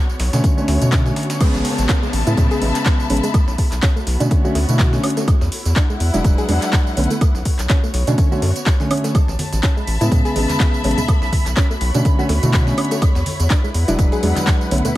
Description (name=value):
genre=deep house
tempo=124 BPM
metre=4/4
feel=swing 56% on 16ths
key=B dorian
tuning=A4 = 443 Hz
part: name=warm symphonic string section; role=texture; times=0.0-15.0 s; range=B3 to B5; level=-28 LUFS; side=left 2 dB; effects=sidechain pumping
part: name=deep house drum kit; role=drums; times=0.1-14.9 s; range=crash cymbal, handclaps, hi-hat, tambourine, woodblock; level=-26 LUFS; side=equal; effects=overdrive
part: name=round analog bass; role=bass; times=0.2-14.8 s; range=E1 to B2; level=-18 LUFS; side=equal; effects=sidechain pumping
part: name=breakbeat sampler-style drum kit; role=drums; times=0.2-14.9 s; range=hi-hat, snare drum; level=-34 LUFS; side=equal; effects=none
part: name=felt-muted upright piano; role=stabs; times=0.3-14.8 s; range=C#3 to E4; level=-22 LUFS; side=equal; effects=sidechain pumping, tape echo
part: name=electronic kick drum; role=drums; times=0.4-14.6 s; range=none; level=-16 LUFS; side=equal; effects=overdrive
part: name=congas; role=percussion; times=0.8-0.9, 9.4-14.9 s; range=none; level=-28 LUFS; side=equal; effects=none
part: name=soft round pluck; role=arpeggios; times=1.4-14.9 s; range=G#3 to G#4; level=-26 LUFS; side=right 1 dB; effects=chorus, cassette tape, sidechain pumping, dub echo
part: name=downlifter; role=sound effects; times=1.4-5.3 s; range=none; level=-30 LUFS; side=equal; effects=none
part: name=analog string pad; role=texture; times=9.5-15.0 s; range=B5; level=-30 LUFS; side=right 2 dB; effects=ensemble chorus, phaser
room=digital ambience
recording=vinyl crackle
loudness=-15 LUFS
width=side -16 dB against mid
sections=0.0-1.4 A section; 1.4-15.0 B section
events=drop 1.4-15.0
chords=0.0 Bm9; 1.4 Amaj7; 3.3 Bm9; 5.3 E7; 7.0 Bm9; 9.1 Amaj7; 11.1 Bm9; 13.0 E7